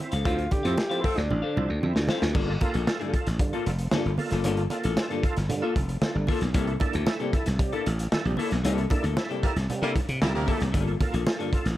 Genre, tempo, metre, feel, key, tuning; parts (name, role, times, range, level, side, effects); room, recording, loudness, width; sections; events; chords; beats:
funk; 114 BPM; 4/4; straight; A4 = 441 Hz
semi-hollow electric guitar; accompaniment; 0.0-11.7 s; Bb3 to F5; -32 LUFS; left 7 dB
overdriven tonewheel organ; stabs; 0.0-11.7 s; G2 to A4; -32 LUFS; right 3 dB; chorus vibrato, slow rotary speaker
crunchy breakbeat drum kit; drums; 0.0-11.8 s; crash cymbal, hi-hat, kick drum, snare drum; -28 LUFS; equal
slap bass; bass; 0.1-11.8 s; F1 to C3; -27 LUFS; equal
breathy alto saxophone; melody; 0.3-2.0 s; D4 to C5; -31 LUFS; equal
congas; percussion; 0.3-11.4 s; -34 LUFS; right 3 dB
warm horn section; second line; 0.7-1.2, 9.4-10.7 s; G3 to C5; -34 LUFS; equal
studio reverb; dark, warm production; -23 LUFS; side -14 dB against mid
0.0-2.4 A section; 2.4-11.8 B section
drum fill 1.3-2.4; band accent 8.6-10.7
0.0 Dm7; 2.4 Gm9; 6.5 C13; 10.7 Gm9
| 0.25 0.78 1.30 1.83 | 2.35 2.88 3.40 3.92 | 4.45 4.97 5.50 6.02 | 6.55 7.07 7.59 8.12 | 8.64 9.17 9.69 10.21 | 10.74 11.26